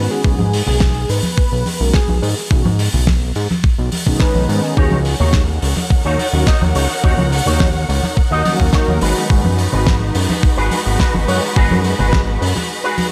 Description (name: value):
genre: nu-disco, nu disco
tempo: 106 BPM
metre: 4/4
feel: straight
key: B major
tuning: A4 = 438 Hz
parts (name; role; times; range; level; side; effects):
- unison lead; melody; 0.0-5.2 s; G#4 to B4; -27 LUFS; equal; dub echo
- mellow synth brass; accompaniment; 0.0-11.7 s; D#3 to A#4; -26 LUFS; equal; chorus, dub echo
- fat analog bass; bass; 0.0-12.5 s; G#1 to G#2; -20 LUFS; equal; sidechain pumping
- electronic kick drum; drums; 0.2-12.2 s; none; -17 LUFS; equal; studio reverb
- congas; percussion; 0.4-13.1 s; none; -25 LUFS; equal; none
- damped 70s drum kit; drums; 0.5-13.1 s; hi-hat, snare drum; -25 LUFS; equal; studio reverb, dub echo
- muted studio string section; sustained chords; 4.8-13.1 s; G#3 to F#5; -26 LUFS; equal; sidechain pumping
- electric guitar with an envelope filter; riff; 4.8-13.1 s; D#4 to D#5; -24 LUFS; equal; ensemble chorus, vintage 12-bit sampler grit, dub echo
room: light reverb, studio reverb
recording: echo-heavy mix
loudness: -16 LUFS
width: mono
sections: 0.0-13.1 A section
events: none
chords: 0.0 B69; 4.8 D#m7; 9.0 G#m7